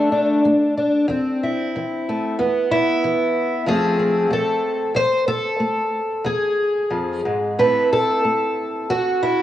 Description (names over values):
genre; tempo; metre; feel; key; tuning
folk, solo fingerstyle acoustic guitar; 93 BPM; 4/4; rubato; unclear; A4 = 440 Hz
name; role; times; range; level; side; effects
fingerpicked twelve-string acoustic guitar; solo; 0.0-9.4 s; E2 to C5; -17 LUFS; equal; none
room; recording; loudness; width
moderate lush hall reverb, RT60 2.7 s; home recording on cassette, small room ambience; -18 LUFS; side -12 dB against mid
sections
0.0-7.6 A section; 7.6-9.4 B section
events
none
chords
0.0 D5; 1.1 C6/E; 2.4 E5; 3.7 F; 4.9 A5/E; 6.2 E; 7.6 Am